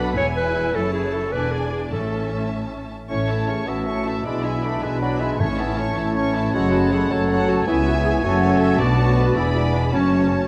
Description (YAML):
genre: quick classical-period movement for symphony orchestra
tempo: 105 BPM (dotted quarters)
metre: 6/8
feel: straight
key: A major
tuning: A4 = 440 Hz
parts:
  - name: muted studio violin section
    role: melody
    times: 0.0-10.5 s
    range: F#5 to C#6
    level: -36 LUFS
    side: equal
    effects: none
  - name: muted chamber violin section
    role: second line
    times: 0.0-10.5 s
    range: A4 to G#5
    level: -34 LUFS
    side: equal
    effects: none
  - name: warm clarinet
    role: second line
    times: 0.0-10.5 s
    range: C#4 to C#5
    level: -29 LUFS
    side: equal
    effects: none
  - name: muted chamber viola section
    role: accompaniment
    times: 0.0-10.5 s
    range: C#4 to A4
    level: -32 LUFS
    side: equal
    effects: none
  - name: muted symphonic cello section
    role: bass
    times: 0.0-10.5 s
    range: C#2 to B2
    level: -28 LUFS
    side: equal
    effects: none
  - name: muted symphonic double bass section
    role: bass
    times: 0.0-10.5 s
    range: E1 to C#2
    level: -28 LUFS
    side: equal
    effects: none
  - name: timpani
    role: percussion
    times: 1.9-2.5, 5.4-5.9 s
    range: A2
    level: -32 LUFS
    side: equal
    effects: none
  - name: clear oboe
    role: second line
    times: 3.1-10.5 s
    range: B4 to E5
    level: -32 LUFS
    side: equal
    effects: none
  - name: flute section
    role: second line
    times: 3.1-10.5 s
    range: F#5 to C#6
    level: -35 LUFS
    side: equal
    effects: none
  - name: warm bassoon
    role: accompaniment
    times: 3.1-10.5 s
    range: F#3 to C#4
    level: -30 LUFS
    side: equal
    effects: none
  - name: mellow French horn section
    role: sustained chords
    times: 3.1-10.5 s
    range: E3 to E4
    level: -28 LUFS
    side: equal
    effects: none
room: moderate scoring stage reverb, RT60 1.6 s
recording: none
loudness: -21 LUFS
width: mono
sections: 0.0-3.1 A section; 3.1-10.5 B section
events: none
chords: 0.2 E; 0.7 F#m; 1.3 E7; 1.9 A; 4.3 E7/B; 5.4 A; 6.5 F#m; 7.7 C#m7; 8.2 F#m; 8.8 Bm7; 9.4 E7; 9.9 F#m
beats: 0.18 | 0.75 1.33 | 1.92 2.51 | 3.10 3.68 | 4.26 4.83 | 5.40 5.97 | 6.54 7.11 | 7.68 8.24 | 8.80 9.37 | 9.94